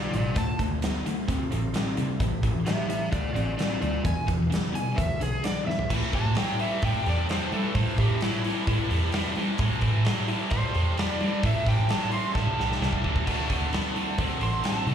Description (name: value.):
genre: blues rock power trio and southern rock.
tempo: 130 BPM.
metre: 4/4.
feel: straight.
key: A minor.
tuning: A4 = 444 Hz.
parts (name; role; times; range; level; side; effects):
overdriven slide guitar; melody; 0.0-14.9 s; E4 to C6; -32 LUFS; equal; slapback echo.
overdriven tonewheel organ; sustained chords; 0.0-14.9 s; F3 to C#5; -44 LUFS; right 4 dB; none.
distorted electric guitar; riff; 0.0-14.9 s; E2 to C4; -30 LUFS; equal; overdrive, slapback echo.
vintage muted picked electric bass; bass; 0.1-14.9 s; A1 to G3; -27 LUFS; equal; none.
big rock drum kit; drums; 0.1-14.9 s; crash cymbal, hi-hat, kick drum, snare drum, toms; -29 LUFS; equal; none.
room: light reverb.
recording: live gig heard through the venue's PA, club reverb.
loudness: -24 LUFS.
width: side -8 dB against mid.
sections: 0.0-5.9 A section; 5.9-14.9 B section.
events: drum fill 5.7, 12.4-13.3; electric slide guitar solo 5.9-14.9.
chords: 0.4 Dm7; 2.2 Am7; 3.1 Dm7; 4.1 E7b9; 5.9 Am7; 13.3 Dm7.